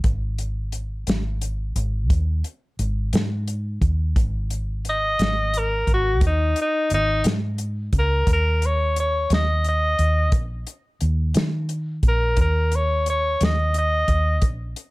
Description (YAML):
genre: slow blues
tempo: 58 BPM (dotted quarters)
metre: 12/8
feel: straight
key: unclear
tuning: A4 = 440 Hz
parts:
  - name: vintage muted fingered electric bass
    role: bass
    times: 0.0-14.7 s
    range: Ab1 to Eb3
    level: -22 LUFS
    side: equal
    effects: none
  - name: warm soul drum kit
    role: drums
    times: 0.0-14.9 s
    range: hi-hat, kick drum, snare drum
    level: -22 LUFS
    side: equal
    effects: none
  - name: bright tenor saxophone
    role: melody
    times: 4.9-14.4 s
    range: Eb4 to Eb5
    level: -22 LUFS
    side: equal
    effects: plate reverb
room: little or no reverb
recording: none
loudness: -19 LUFS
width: side -21 dB against mid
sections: 0.0-14.9 A section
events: none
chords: 0.1 Ab5; 8.3 Eb5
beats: | 0.05 1.08 2.11 3.13 | 4.16 5.19 6.22 7.24 | 8.27 9.30 10.32 11.35 | 12.38 13.40 14.43